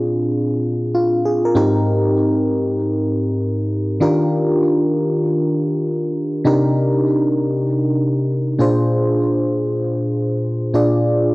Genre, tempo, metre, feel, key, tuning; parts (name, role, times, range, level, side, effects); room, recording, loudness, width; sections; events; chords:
R&B; free time; Eb major; A4 = 440 Hz
FM electric piano; solo; 0.0-11.3 s; Ab2 to D5; -15 LUFS; equal; chorus, cassette tape
moderate spring reverb, RT60 2.5 s; home recording on cassette, nothing above 10.6 kHz; -15 LUFS; side -21 dB against mid
0.0-4.0 A section; 4.0-11.3 B section
0.0 Bb7; 1.6 Abmaj7; 4.0 Ebmaj7; 6.5 Cm7; 8.6 Bb7